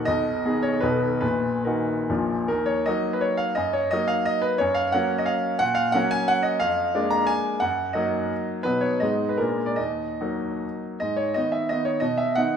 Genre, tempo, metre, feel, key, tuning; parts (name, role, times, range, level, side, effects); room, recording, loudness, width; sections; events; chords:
classical, romantic triple-time dance for piano with dotted rhythms; 131-191 BPM; 3/4; rubato; Eb minor; A4 = 442 Hz
bright grand piano; solo; 0.0-12.6 s; Bb1 to Bb5; -22 LUFS; equal
moderate recital hall reverb, RT60 1.6 s; minimal, uncompressed stereo recording; -22 LUFS; side -7 dB against mid
0.0-2.5 A section; 2.5-11.0 B section; 11.0-12.6 C section
0.1 Abm/Cb; 0.8 B7; 1.2 Ebm/Bb; 2.1 Bb; 2.5 Ebm; 3.6 Ebm/Gb; 4.6 Gb; 5.6 Gb/Bb; 6.6 Bb7/F; 7.6 Ebm/Gb; 8.7 B; 9.0 Abm; 9.4 Bb7; 9.8 Ebm; 11.0 G#m; 12.0 G#m/B (rootless)